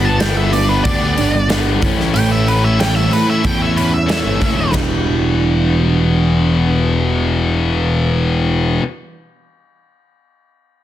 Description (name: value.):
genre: quiet-loud alternative rock.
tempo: 93 BPM.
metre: 4/4.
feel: straight.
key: E dorian.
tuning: A4 = 441 Hz.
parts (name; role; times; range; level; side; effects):
octave-fuzz lead guitar; melody; 0.0-4.7 s; B4 to A5; -20 LUFS; right 1 dB; distortion.
picked steel-string acoustic guitar; arpeggios; 0.0-8.8 s; E2 to A4; -21 LUFS; right 5 dB; analog delay.
high-gain distorted guitar; riff; 0.0-8.8 s; E2 to E4; -19 LUFS; left 5 dB; distortion.
fuzz picked electric bass; bass; 0.0-8.8 s; E1 to E2; -17 LUFS; equal; overdrive.
big rock drum kit; drums; 0.2-4.9 s; hi-hat, kick drum, ride cymbal, snare drum; -21 LUFS; equal; none.
room: moderate large studio reverb, RT60 1.1 s, small room ambience.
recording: dense, heavily limited modern master.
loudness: -13 LUFS.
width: side -12 dB against mid.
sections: 0.0-4.7 A section; 4.7-7.3 B section.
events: lead electric guitar solo 0.0-4.7.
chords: 0.0 G; 1.8 A; 4.7 Em7.